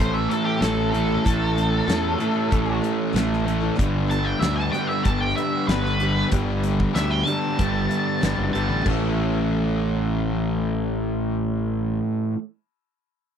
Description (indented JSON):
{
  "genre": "classic rock",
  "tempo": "95 BPM",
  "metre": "4/4",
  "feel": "straight",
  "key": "A mixolydian",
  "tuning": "A4 = 441 Hz",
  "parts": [
    { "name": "octave-fuzz lead guitar", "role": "melody", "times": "0.0-8.8 s", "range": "G4 to A5", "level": "-26 LUFS", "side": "equal", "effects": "wah, distortion" },
    { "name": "picked steel-string acoustic guitar", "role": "accompaniment", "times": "0.0-12.4 s", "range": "A2 to B4", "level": "-33 LUFS", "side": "left 5 dB", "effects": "none" },
    { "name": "raw garage guitar", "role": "riff", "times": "0.0-12.4 s", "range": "G2 to A3", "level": "-26 LUFS", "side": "right 12 dB", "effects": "overdrive" },
    { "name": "sludgy distorted guitar", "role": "riff", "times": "0.0-12.4 s", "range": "G2 to A4", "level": "-27 LUFS", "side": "left 10 dB", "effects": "overdrive" },
    { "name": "fuzz fingered electric bass", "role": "bass", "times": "0.0-12.0 s", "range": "F#1 to E2", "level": "-26 LUFS", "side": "equal", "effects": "overdrive" },
    { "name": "huge arena drum kit", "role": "drums", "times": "0.0-9.0 s", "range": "crash cymbal, hi-hat, kick drum, snare drum", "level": "-26 LUFS", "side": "equal", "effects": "none" }
  ],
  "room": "light reverb",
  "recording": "dry, close 1970s-style studio recording",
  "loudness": "-20 LUFS",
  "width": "side -8 dB against mid",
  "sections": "0.0-8.8 A section; 8.8-11.4 B section",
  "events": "lead electric guitar solo 0.0-8.8",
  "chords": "0.0 A; 3.8 G; 8.8 A",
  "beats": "0.62 | 1.25 1.88 2.51 3.14 | 3.77 4.41 5.04 5.67 | 6.31 6.94 7.57 8.21 | 8.84 9.48 10.11 10.75"
}